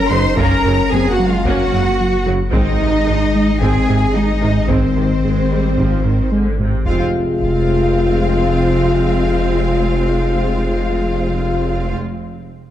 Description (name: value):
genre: cinematic, hybrid orchestral and electronic film score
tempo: 111 BPM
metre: 4/4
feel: straight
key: unclear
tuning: A4 = 440 Hz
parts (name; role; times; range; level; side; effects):
- warm symphonic violin section; melody; 0.0-11.9 s; C5 to C6; -28 LUFS; left 4 dB; none
- rich symphonic violin section; second line; 0.0-11.9 s; C5 to C6; -27 LUFS; left 1 dB; none
- mellow French horn section; sustained chords; 0.0-11.7 s; Eb3 to F4; -20 LUFS; left 3 dB; none
- pure sine sub bass; bass; 0.0-11.9 s; F1 to Ab1; -21 LUFS; equal; none
- rich symphonic cello section; bass; 0.0-11.9 s; C4 to C5; -21 LUFS; right 1 dB; none
- clear symphonic viola section; accompaniment; 0.1-11.9 s; C3 to Db4; -25 LUFS; equal; none
- smooth synth bass; riff; 0.1-6.8 s; Gb2 to Ab3; -20 LUFS; right 2 dB; none
- rich symphonic double bass section; bass; 0.1-11.9 s; F1 to Ab1; -23 LUFS; right 2 dB; none
- warm trombone section; sustained chords; 0.4-11.7 s; C3 to C4; -26 LUFS; equal; none
- taiko ensemble; drums; 0.4-7.9 s; none; -24 LUFS; equal; none
room: moderate scoring stage reverb, RT60 2.1 s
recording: dark, warm production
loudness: -13 LUFS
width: side -11 dB against mid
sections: 0.0-6.9 A section; 6.9-11.2 B section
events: none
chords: 0.0 Gb; 2.5 Ab; 6.9 Fm